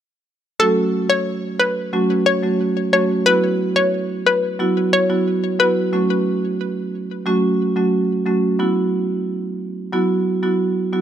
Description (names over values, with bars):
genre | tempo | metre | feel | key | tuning
dancehall | 90 BPM | 4/4 | straight | F# minor | A4 = 440 Hz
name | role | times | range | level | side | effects
hollow square pluck | melody | 0.6-5.7 s | A4 to C#5 | -18 LUFS | left 2 dB | chorus, ping-pong delay
marimba with medium hard mallets | accompaniment | 0.6-11.0 s | F#3 to F#4 | -18 LUFS | right 2 dB | none
room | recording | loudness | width
light reverb, small room ambience | none | -16 LUFS | side -10 dB against mid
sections
0.6-11.0 A section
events
none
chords
0.6 F#m; 3.3 Esus2; 5.9 F#m; 8.6 Esus2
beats
| 0.60 1.27 1.93 2.60 | 3.27 3.93 4.60 5.27 | 5.93 6.60 7.27 7.93 | 8.60 9.27 9.93 10.60